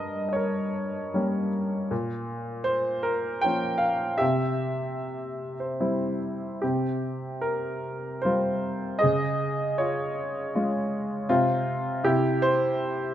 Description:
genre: classical, lyrical solo piano.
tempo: 78 BPM.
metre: 3/4.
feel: rubato.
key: unclear.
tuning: A4 = 440 Hz.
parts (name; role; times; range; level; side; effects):
clear upright piano; solo; 0.0-13.1 s; G2 to G5; -25 LUFS; equal; none.
room: moderate recital hall reverb, RT60 1.7 s.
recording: none.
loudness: -24 LUFS.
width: side -11 dB against mid.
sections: 0.0-13.1 A section.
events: none.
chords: 0.0 Gdim; 1.9 Bbm; 4.2 C; 6.6 Csus4; 9.0 Db; 11.3 N.C.; 12.0 C.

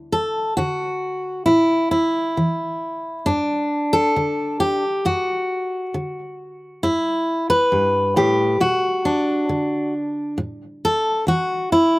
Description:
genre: folk, solo fingerstyle acoustic guitar.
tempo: 67 BPM.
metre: 4/4.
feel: straight.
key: unclear.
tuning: A4 = 440 Hz.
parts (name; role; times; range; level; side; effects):
fingerpicked steel-string acoustic guitar; solo; 0.0-12.0 s; D2 to B4; -18 LUFS; equal; none.
room: light reverb.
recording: recorded outdoors, with no room sound.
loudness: -18 LUFS.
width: side -20 dB against mid.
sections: 0.0-12.0 A section.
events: none.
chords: 0.0 N.C.; 1.5 A5; 3.3 G5; 5.1 D/F#; 6.8 G69; 8.6 Bm; 10.4 A5.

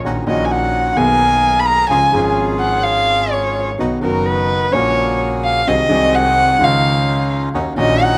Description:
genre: tango.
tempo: 128 BPM.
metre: 4/4.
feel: rubato.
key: unclear.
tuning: A4 = 440 Hz.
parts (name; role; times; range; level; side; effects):
warm concert grand piano; accompaniment; 0.0-8.2 s; F#1 to G#4; -22 LUFS; equal; none.
clear double bass; bass; 0.0-8.2 s; F#1 to D#2; -25 LUFS; equal; none.
bandoneon; stabs; 0.1-8.2 s; A#3 to A#4; -26 LUFS; equal; none.
warm violin; second line; 0.3-8.2 s; A#4 to B5; -18 LUFS; equal; none.
room: light reverb, small room reverb.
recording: rough home demo mix.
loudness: -15 LUFS.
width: mono.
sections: 0.0-8.2 A section.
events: violin solo 0.0-8.2.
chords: 0.0 D#m7/A#; 1.0 G#madd9/B; 1.9 C#; 3.8 B; 4.7 F#add9/A#; 5.7 G#7/B#; 6.6 C#add9; 7.5 D#m7.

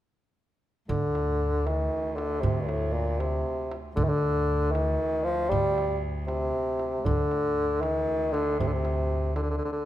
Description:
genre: Persian modal ensemble.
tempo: 78 BPM (dotted quarters).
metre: 6/8.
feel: straight.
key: D dastgah shur.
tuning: A4 = 440 Hz.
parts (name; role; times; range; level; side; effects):
warm bassoon; melody; 0.9-9.9 s; G2 to G3; -27 LUFS; equal; none.
upright bass; bass; 0.9-9.6 s; D2; -30 LUFS; equal; none.
rich cello; drone; 0.9-9.9 s; D2; -38 LUFS; equal; none.
tombak; percussion; 0.9-9.6 s; none; -34 LUFS; right 4 dB; none.
room: moderate recital hall reverb, RT60 1.6 s.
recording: minimal, uncompressed stereo recording.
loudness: -25 LUFS.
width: side -13 dB against mid.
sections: 0.9-9.9 A section.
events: none.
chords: none.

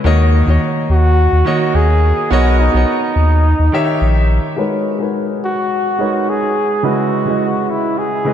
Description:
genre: sunset chillout.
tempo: 106 BPM.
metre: 4/4.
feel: straight.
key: G# minor.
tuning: A4 = 440 Hz.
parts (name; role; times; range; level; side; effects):
clear concert grand piano; accompaniment; 0.0-8.3 s; C#3 to E5; -17 LUFS; moving between left 3 dB and right 5 dB; auto-pan, low-pass filter, ping-pong delay.
warm sub bass; bass; 0.0-4.4 s; A#1 to D#2; -12 LUFS; equal; none.
mellow flugelhorn; melody; 0.9-8.3 s; D#4 to G#4; -18 LUFS; left 1 dB; ping-pong delay.
room: wet lush hall reverb, RT60 2.6 s.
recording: dreamy mix soaked in reverb.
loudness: -12 LUFS.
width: side -9 dB against mid.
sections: 0.0-4.6 A section; 4.6-8.3 B section.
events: none.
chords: 0.0 D#m7; 2.3 Bmaj7; 3.4 D#7b9; 4.6 G#m11; 6.8 C#m9.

